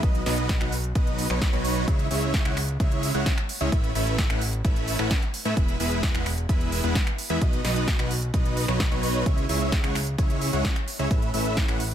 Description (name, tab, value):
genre	EDM, festival progressive house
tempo	130 BPM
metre	4/4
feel	straight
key	C# minor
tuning	A4 = 436 Hz
part	big supersaw lead	riff	0.0-11.8 s	F#3 to F#5	-27 LUFS	right 1 dB	sidechain pumping, ping-pong delay
part	fat analog bass	bass	0.0-11.9 s	E1 to A2	-28 LUFS	equal	sidechain pumping
part	big-room dance drum kit	drums	0.0-11.9 s	finger snaps, hi-hat, snare drum	-31 LUFS	right 1 dB	none
part	electronic kick drum	drums	0.0-11.7 s	none	-24 LUFS	equal	overdrive
room	little or no reverb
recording	none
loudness	-22 LUFS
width	side -10 dB against mid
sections	0.0-11.9 A section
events	none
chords	0.0 B; 1.9 C#m; 3.7 Aadd9; 5.6 E; 7.4 B; 9.3 C#m; 11.1 Aadd9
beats	| 0.03 0.49 0.95 1.42 | 1.88 2.34 2.80 3.26 | 3.72 4.18 4.65 5.11 | 5.57 6.03 6.49 6.95 | 7.42 7.88 8.34 8.80 | 9.26 9.72 10.19 10.65 | 11.11 11.57